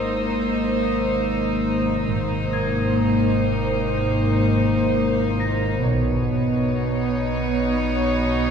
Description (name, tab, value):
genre	cinematic, suspense film score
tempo	free time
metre	none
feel	none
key	unclear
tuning	A4 = 439 Hz
part	warm studio violin section	melody	0.0-8.5 s	C5 to C#5	-28 LUFS	equal	none
part	rich studio violin section	second line	0.0-8.5 s	Eb4	-30 LUFS	left 1 dB	none
part	dark studio viola section	accompaniment	0.0-8.5 s	Bb3 to B3	-25 LUFS	left 1 dB	none
part	glass harmonica	sustained chords	0.0-8.5 s	Eb4 to D#5	-30 LUFS	equal	none
part	warm studio cello section	bass	0.0-8.5 s	Ab2 to B2	-24 LUFS	right 1 dB	none
part	metallic inharmonic drone	drone	0.0-8.5 s	Ab1 to B1	-28 LUFS	equal	chorus, built-in reverb
part	concert harp	texture	0.0-8.2 s	Ab6 to Bb6	-34 LUFS	left 3 dB	none
part	rich chamber violin section	texture	0.0-5.4 s	Eb6 to Bb6	-36 LUFS	right 2 dB	none
part	dark studio double bass section	bass	2.1-6.8 s	Ab1 to B1	-30 LUFS	right 2 dB	none
room	wet scoring stage reverb, RT60 2.0 s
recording	heard from further back in the room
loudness	-19 LUFS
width	side -7 dB against mid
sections	0.0-8.5 A section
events	none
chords	0.0 Abadd9; 5.9 Badd9